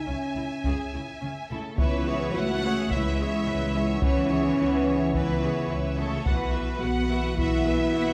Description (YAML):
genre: cinematic, epic orchestral film score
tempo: 107 BPM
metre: 4/4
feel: straight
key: C# minor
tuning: A4 = 440 Hz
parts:
  - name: warm symphonic violin section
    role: melody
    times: 0.0-8.1 s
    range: A4 to G#5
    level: -37 LUFS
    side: equal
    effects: none
  - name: warm symphonic violin section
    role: second line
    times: 0.0-8.1 s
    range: C#5 to F#5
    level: -38 LUFS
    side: equal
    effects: none
  - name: mellow French horn section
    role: sustained chords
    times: 0.0-8.1 s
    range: A3 to F#4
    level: -32 LUFS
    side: equal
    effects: none
  - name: warm symphonic viola section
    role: accompaniment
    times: 0.1-8.1 s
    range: C#4 to C#5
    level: -38 LUFS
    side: equal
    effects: none
  - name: warm symphonic cello section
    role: bass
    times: 0.1-8.1 s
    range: C#3 to B3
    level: -34 LUFS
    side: equal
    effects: none
  - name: warm symphonic double bass section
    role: bass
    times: 0.1-8.1 s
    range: B1 to C#2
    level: -34 LUFS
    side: equal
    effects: none
  - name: solo taiko drums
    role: drums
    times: 0.6-7.9 s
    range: none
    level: -30 LUFS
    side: equal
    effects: none
  - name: warm trombone section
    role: sustained chords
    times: 1.8-8.1 s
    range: E3 to B3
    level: -35 LUFS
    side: equal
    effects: none
room: moderate recital hall reverb, RT60 1.4 s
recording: none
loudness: -26 LUFS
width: mono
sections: 0.0-1.8 A section; 1.8-8.1 A section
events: none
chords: 0.0 C#m; 1.8 C#m7; 6.3 Bsus4